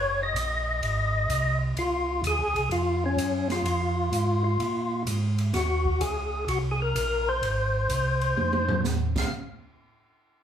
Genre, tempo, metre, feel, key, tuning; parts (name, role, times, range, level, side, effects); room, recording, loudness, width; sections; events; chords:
soul jazz organ trio; 127 BPM; 4/4; swing 67% on 8ths; A4 = 440 Hz
percussive tonewheel organ; melody; 0.0-9.3 s; Db4 to F5; -26 LUFS; left 2 dB; slow rotary speaker, overdrive, chorus vibrato
mellow tonewheel organ; bass; 0.0-9.3 s; Gb1 to Bb2; -28 LUFS; right 1 dB; slow rotary speaker
open jazz drum kit; drums; 0.4-9.2 s; crash cymbal, hi-hat, kick drum, ride cymbal, snare drum, toms; -34 LUFS; right 2 dB
wet large studio reverb, RT60 0.8 s; band playing live in one room; -24 LUFS; side -9 dB against mid
0.0-5.5 A section; 5.5-9.3 B section; 9.3-10.4 C section
drum fill 8.4-8.8
0.0 Ebm; 0.8 Ab; 1.8 Dbmaj7; 3.7 Fm; 4.6 Bb5; 5.5 Ebm7; 7.4 Ab; 9.1 Db; 9.3 N.C.